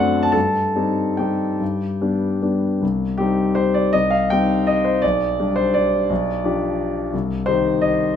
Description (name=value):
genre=classical, piano waltz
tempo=139-182 BPM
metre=3/4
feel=rubato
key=C minor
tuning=A4 = 437 Hz
part: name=warm concert grand piano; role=solo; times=0.0-8.2 s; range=B1 to A5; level=-17 LUFS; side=left 2 dB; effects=none
room=moderate recital hall reverb, RT60 1.4 s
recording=close, detailed microphones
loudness=-17 LUFS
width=side -8 dB against mid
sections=0.0-2.8 A section; 2.8-8.2 B section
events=none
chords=0.3 Cm/G; 1.6 G; 2.8 Cm; 5.0 G/B; 6.1 G7/B; 7.1 Cm